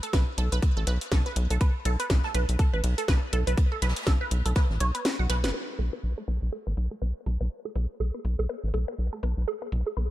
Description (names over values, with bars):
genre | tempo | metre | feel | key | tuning
minimal techno | 122 BPM | 4/4 | swing 58% on 16ths | unclear | A4 = 440 Hz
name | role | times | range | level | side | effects
resonant blip pluck | riff | 0.0-10.0 s | A4 to F#5 | -33 LUFS | right 2 dB | phaser, sidechain pumping, ping-pong delay
garage drum kit | drums | 0.0-9.8 s | hi-hat, snare drum | -32 LUFS | left 1 dB | low-pass filter on hats, low-pass filter on snare
rubbery square bass | bass | 0.1-10.1 s | F#1 to B1 | -26 LUFS | equal | sidechain pumping
electronic kick drum | drums | 0.1-4.7 s | none | -23 LUFS | equal | none
jazz brush drum kit | drums | 0.1-5.4 s | ride cymbal, snare drum | -41 LUFS | right 1 dB | high-pass filter on cymbals, high-pass filter on snare, high-pass filter on room
room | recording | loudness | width
small room ambience | none | -25 LUFS | side -14 dB against mid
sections
0.0-5.5 A section; 5.5-10.1 B section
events
drop 0.0-5.5; kick drops out 5.0-5.5; drum fill 5.0-5.5; band accent 5.4; filter sweep on drum 5.5-10.1; filter sweep on synth arpeggio sound 5.5-10.1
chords
0.0 B5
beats
0.13 0.62 1.12 | 1.61 2.10 2.59 3.08 | 3.58 4.07 4.56 5.05 | 5.54 6.03 6.53 7.02 | 7.51 8.00 8.49 8.98 | 9.48 9.97